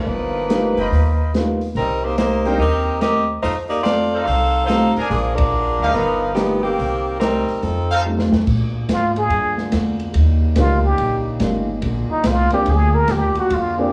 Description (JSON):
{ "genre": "jazz, big band swing", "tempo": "143 BPM", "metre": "4/4", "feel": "swing 65% on 8ths", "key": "Bb mixolydian", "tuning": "A4 = 440 Hz", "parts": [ { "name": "bright saxophone section", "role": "melody", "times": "0.0-8.1 s", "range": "D#3 to F5", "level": "-22 LUFS", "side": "equal", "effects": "plate reverb, slapback echo" }, { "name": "upright bass", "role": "bass", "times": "0.0-13.9 s", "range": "Gb1 to Bb2", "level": "-23 LUFS", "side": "equal", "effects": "none" }, { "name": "warm baby grand piano", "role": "accompaniment", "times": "0.5-13.9 s", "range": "G3 to Ab4", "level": "-25 LUFS", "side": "equal", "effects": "plate reverb, slapback echo" }, { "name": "open jazz drum kit", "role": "drums", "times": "0.5-13.6 s", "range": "crash cymbal, hi-hat, kick drum, ride cymbal, snare drum", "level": "-25 LUFS", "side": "equal", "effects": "slapback echo" }, { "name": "bright trumpet section", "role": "stabs", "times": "0.8-8.0 s", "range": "Cb4 to B5", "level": "-26 LUFS", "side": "equal", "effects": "plate reverb, slapback echo" }, { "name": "bright trombone section", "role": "sustained chords", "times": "8.5-13.9 s", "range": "Db3 to Ab4", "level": "-30 LUFS", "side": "equal", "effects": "plate reverb" }, { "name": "trumpet with plunger mute", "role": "melody", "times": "8.9-13.9 s", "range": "Eb4 to Bb4", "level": "-21 LUFS", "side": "equal", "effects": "plate reverb, slapback echo" } ], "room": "moderate club reverb, RT60 0.5 s", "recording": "live gig heard through the venue's PA, club reverb, small room ambience", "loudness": "-18 LUFS", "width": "mono", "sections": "0.0-8.5 A section; 8.5-13.9 B section", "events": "band accent 5.3; drum fill 8.1-8.5; muted trumpet solo 8.5-13.9", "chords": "0.1 G7alt; 1.8 Cm7; 3.4 F7; 5.1 Bb7; 6.0 G7alt; 6.8 Cm7; 7.6 F7; 8.5 Bb7; 10.2 Eb7; 11.8 Bb7" }